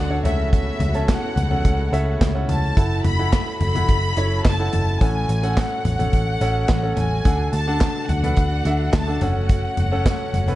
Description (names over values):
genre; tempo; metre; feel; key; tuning
piano-driven pop; 107 BPM; 4/4; straight; unclear; A4 = 440 Hz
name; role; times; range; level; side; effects
warm studio violin section; melody; 0.0-10.6 s; E5 to B5; -27 LUFS; left 2 dB; none
clear concert grand piano; accompaniment; 0.0-10.6 s; A2 to A5; -26 LUFS; right 1 dB; none
warm studio string section; sustained chords; 0.0-10.6 s; C#3 to A4; -33 LUFS; right 1 dB; none
vintage muted picked electric bass; bass; 0.0-10.6 s; F#1 to D2; -22 LUFS; equal; none
modern studio drum kit; drums; 0.3-10.6 s; handclaps, hi-hat, kick drum, snare drum, toms; -22 LUFS; equal; none
room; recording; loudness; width
small room reverb; dark, warm production, nothing above 10.9 kHz; -18 LUFS; side -16 dB against mid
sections
0.0-10.6 A section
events
none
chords
0.2 A6/C#; 2.8 F#m7; 5.0 A6; 7.3 D; 9.2 F#m